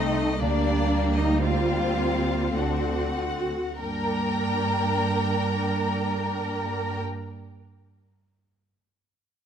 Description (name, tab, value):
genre	classical, slow romantic movement for string orchestra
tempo	46-62 BPM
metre	3/4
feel	rubato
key	G minor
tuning	A4 = 439 Hz
part	clear studio violin section	melody	0.0-7.0 s	Bb4 to F#5	-34 LUFS	left 5 dB	none
part	warm studio violin section	second line	0.0-7.0 s	A3 to Bb5	-31 LUFS	left 4 dB	none
part	rich studio viola section	accompaniment	0.0-7.0 s	G3 to D4	-30 LUFS	left 1 dB	none
part	rich chamber double bass section	bass	0.0-7.0 s	C2 to G2	-28 LUFS	right 3 dB	none
part	rich studio cello section	bass	0.0-7.0 s	D4 to Bb4	-29 LUFS	right 2 dB	none
room	light reverb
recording	close, detailed microphones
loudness	-23 LUFS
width	side -8 dB against mid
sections	0.0-3.8 A section; 3.8-7.3 B section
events	slowing down 0.0-3.8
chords	0.4 Gm/D; 2.6 D7; 3.8 Gm